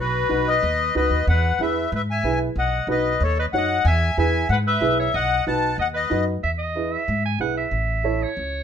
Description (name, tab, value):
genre	latin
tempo	186 BPM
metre	4/4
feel	straight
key	E major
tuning	A4 = 440 Hz
part	accordion	melody	0.0-6.3 s	B4 to A5	-23 LUFS	left 5 dB	light tremolo tuning
part	bright clarinet	second line	0.0-8.6 s	F#4 to G#5	-27 LUFS	right 4 dB	none
part	upright bass	bass	0.0-8.6 s	A1 to G#2	-24 LUFS	equal	none
part	dark upright piano	accompaniment	0.3-8.3 s	D#4 to C#5	-25 LUFS	right 1 dB	none
room	moderate studio reverb, RT60 0.7 s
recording	minimal, uncompressed stereo recording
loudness	-19 LUFS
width	side -8 dB against mid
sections	0.0-6.4 A section; 6.4-8.6 B section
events	clarinet solo 6.4-8.6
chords	0.0 B; 1.3 E; 2.6 B; 3.9 E; 5.1 B7; 6.4 E; 7.7 A